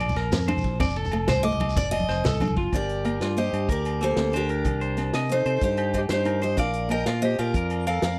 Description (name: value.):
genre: highlife guitar band.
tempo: 124 BPM (dotted quarters).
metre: 12/8.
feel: straight.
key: G minor.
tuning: A4 = 441 Hz.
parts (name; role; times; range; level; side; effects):
electric guitar at the edge of break-up; arpeggios; 0.0-8.2 s; Bb3 to D6; -34 LUFS; equal; slapback echo.
fingered electric bass; bass; 0.0-8.2 s; F1 to C3; -30 LUFS; equal; none.
vintage drum kit; drums; 0.0-8.1 s; hi-hat, kick drum, ride cymbal, snare drum; -32 LUFS; equal; none.
agogo bells; percussion; 0.0-8.0 s; none; -37 LUFS; equal; none.
congas; percussion; 0.1-2.7 s; none; -33 LUFS; equal; none.
shekere; percussion; 0.1-2.5 s; none; -36 LUFS; equal; none.
nylon-string guitar; accompaniment; 0.3-8.2 s; Eb3 to Eb4; -34 LUFS; equal; none.
picked steel-string acoustic guitar; melody; 1.3-8.2 s; G4 to G5; -30 LUFS; equal; slapback echo.
breathy alto saxophone; second line; 2.8-8.2 s; D4 to Bb4; -36 LUFS; equal; none.
room: little or no reverb.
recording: dry, close 1970s-style studio recording.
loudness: -25 LUFS.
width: mono.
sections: 0.0-2.7 A section; 2.7-8.2 B section.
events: steel-string acoustic guitar solo 0.0-2.7.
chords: 0.0 Bb; 0.8 F; 2.7 Gm; 4.7 Cm; 6.6 Bb.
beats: 0.33 | 0.81 1.29 1.77 2.25 | 2.73 3.21 3.69 4.18 | 4.66 5.14 5.62 6.11 | 6.59 7.07 7.56 8.04.